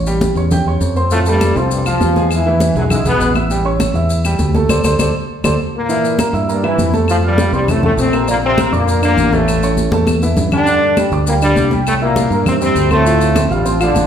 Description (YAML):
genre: latin, salsa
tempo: 201 BPM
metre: 4/4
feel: straight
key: D minor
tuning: A4 = 441 Hz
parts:
  - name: fingered electric bass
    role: bass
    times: 0.0-14.1 s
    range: A1 to G2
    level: -17 LUFS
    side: equal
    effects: none
  - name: warm upright piano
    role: accompaniment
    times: 0.1-14.1 s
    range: D3 to G6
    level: -18 LUFS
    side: right 2 dB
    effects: none
  - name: congas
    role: percussion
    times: 0.1-14.1 s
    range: none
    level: -20 LUFS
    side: equal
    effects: none
  - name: maracas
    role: percussion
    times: 0.1-14.1 s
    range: none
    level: -29 LUFS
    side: left 5 dB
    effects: none
  - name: bright trombone section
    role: melody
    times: 1.1-3.3, 5.8-14.1 s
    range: F#2 to F4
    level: -16 LUFS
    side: left 1 dB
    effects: none
  - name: claves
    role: percussion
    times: 1.4-14.0 s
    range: none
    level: -28 LUFS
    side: left 4 dB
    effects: none
room: wet large studio reverb, RT60 1.2 s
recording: heard from further back in the room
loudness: -12 LUFS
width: side -8 dB against mid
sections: 0.0-5.9 A section; 5.9-14.1 B section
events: band accent 4.7-5.9; drum fill 5.3-5.9, 9.8-10.7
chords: 0.0 A7; 1.1 Fmaj7; 2.3 E; 3.5 A7; 4.7 D5; 5.9 Gm13; 7.1 F; 8.3 Bb; 9.5 A; 10.7 G5; 11.9 C7; 13.1 Dm7